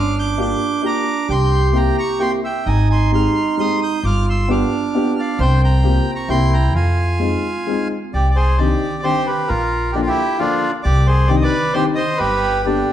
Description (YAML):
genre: musette waltz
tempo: 132 BPM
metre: 3/4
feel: rubato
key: F minor, C minor from 8.1 s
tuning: A4 = 440 Hz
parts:
  - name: bandoneon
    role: melody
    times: 0.0-12.9 s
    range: D4 to G6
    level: -21 LUFS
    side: right 1 dB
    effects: none
  - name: mellow accordion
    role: second line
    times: 0.0-7.9 s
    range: C4 to G4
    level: -22 LUFS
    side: right 6 dB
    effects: none
  - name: upright bass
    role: bass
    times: 0.0-12.8 s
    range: G1 to F2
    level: -17 LUFS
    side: equal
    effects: none
  - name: warm upright piano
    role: accompaniment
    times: 0.4-12.9 s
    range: D3 to G4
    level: -22 LUFS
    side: left 4 dB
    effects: none
room: moderate recital hall reverb, RT60 1.6 s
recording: dark, warm production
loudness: -15 LUFS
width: side -11 dB against mid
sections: 0.0-8.1 A section; 8.1-12.9 B section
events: none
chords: 0.0 Gm7; 1.3 C7; 2.7 Abmaj7; 4.0 G7; 5.4 C7sus4; 6.3 C7; 6.7 Fm7; 8.1 Cmadd9; 9.5 Bb; 10.8 Cmadd9; 12.2 G